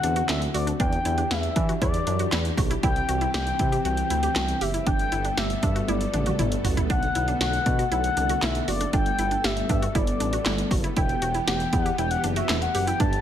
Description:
synth-pop; 118 BPM; 4/4; straight; A4 = 440 Hz
expressive synth lead; melody; 0.0-13.2 s; D5 to A5; -28 LUFS; left 3 dB; chorus
string machine, cellos; sustained chords; 0.0-13.2 s; B2 to A4; -31 LUFS; equal; ensemble chorus
resonant blip pluck; arpeggios; 0.0-13.1 s; D4 to G4; -32 LUFS; right 4 dB; chorus
smooth synth bass; bass; 0.0-13.2 s; E1 to E3; -28 LUFS; equal
punchy analog drum machine; drums; 0.0-13.2 s; handclaps, hi-hat, kick drum, snare drum, toms; -26 LUFS; equal; gated reverb
light reverb; -22 LUFS; side -10 dB against mid
0.0-13.2 A section
drum fill 5.9-6.9
0.0 D7; 0.8 Em7; 2.8 C; 4.9 Gadd9; 6.9 Bm7; 8.9 Gadd9; 11.0 Em

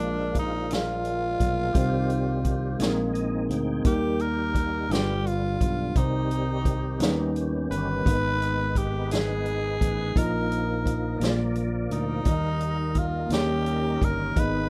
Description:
slow gospel; 57 BPM (dotted quarters); 6/8; straight; Eb major; A4 = 440 Hz
raspy tenor saxophone; melody; 0.0-14.7 s; D4 to B4; -32 LUFS; equal; plate reverb
tine electric piano; accompaniment; 0.0-14.7 s; G2 to Eb5; -32 LUFS; equal
dark French horn section; sustained chords; 0.0-14.7 s; Eb3 to D5; -41 LUFS; equal
percussive tonewheel organ; sustained chords; 0.0-14.7 s; D3 to G5; -37 LUFS; equal; slow rotary speaker, overdrive, chorus vibrato, plate reverb
fingered electric bass; bass; 0.0-14.7 s; G1 to Eb2; -32 LUFS; equal
swinging big-band drum kit; drums; 0.0-14.5 s; hi-hat, kick drum, snare drum; -29 LUFS; equal
little or no reverb; rough home demo mix; -26 LUFS; mono
0.0-14.7 A section
tonewheel organ fill 2.8-3.9
0.0 Bb7; 1.8 Cm; 2.8 Bb9sus4; 3.9 Eb; 4.9 G7; 6.0 Cm; 7.0 Ebaug7; 8.1 Abm; 10.2 Bbsus4; 11.2 Bb; 12.3 Eb; 13.3 Eb7

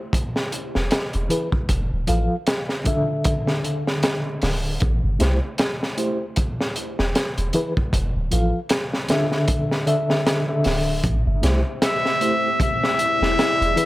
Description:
trip hop; 77 BPM; 4/4; swing 58% on 16ths; A minor; A4 = 440 Hz
crunchy breakbeat drum kit; drums; 0.1-13.9 s; hi-hat, kick drum, snare drum; -23 LUFS; equal
soft 808-style bass; bass; 0.8-13.8 s; D1 to C2; -22 LUFS; equal
mellow reed electric piano; accompaniment; 1.3-13.9 s; D3 to F5; -24 LUFS; equal; fast tremolo, vintage 12-bit sampler grit, low-pass filter, tape echo
deep dark ambient pad; sustained chords; 11.7-13.9 s; A3 to D5; -27 LUFS; left 3 dB; chorus, built-in reverb
trumpet with straight mute; melody; 11.8-13.9 s; E5; -20 LUFS; left 1 dB; vintage 12-bit sampler grit, tape echo
light reverb, studio reverb; echo-heavy mix; -19 LUFS; side -17 dB against mid
0.0-13.9 A section
0.1 N.C.; 1.7 F6; 3.3 Dsus2; 4.8 Am7; 6.4 N.C.; 7.9 F6; 9.5 Dsus2; 11.0 Am7; 12.6 E7

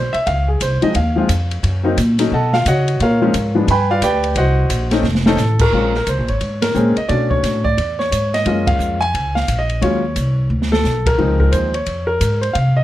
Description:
jazz piano trio; 176 BPM; 4/4; swing 63% on 8ths; A4 = 440 Hz
warm baby grand piano; melody; 0.0-12.8 s; F3 to B5; -17 LUFS; left 1 dB
upright bass; bass; 0.0-12.8 s; F1 to C#3; -18 LUFS; equal
open jazz drum kit; drums; 0.1-12.6 s; crash cymbal, hi-hat, kick drum, ride cymbal, snare drum; -23 LUFS; right 1 dB
light reverb; lossy compression artefacts; -14 LUFS; side -14 dB against mid
0.0-5.7 A section; 5.7-12.8 B section
grand piano solo 0.0-5.7; drum fill 5.0-5.4, 10.5-10.8; band accent 6.6, 8.6, 11.0
0.3 Dbmaj7; 1.6 Cm7b5 (rootless); 2.3 B9; 3.0 Bbm7; 3.7 G7b9; 4.4 Cm7b5; 5.0 F; 5.7 Bbm7; 7.1 Bm7; 7.8 E; 8.4 Gbmaj9; 9.8 Ebm11; 10.5 D5; 11.2 Dbmaj7

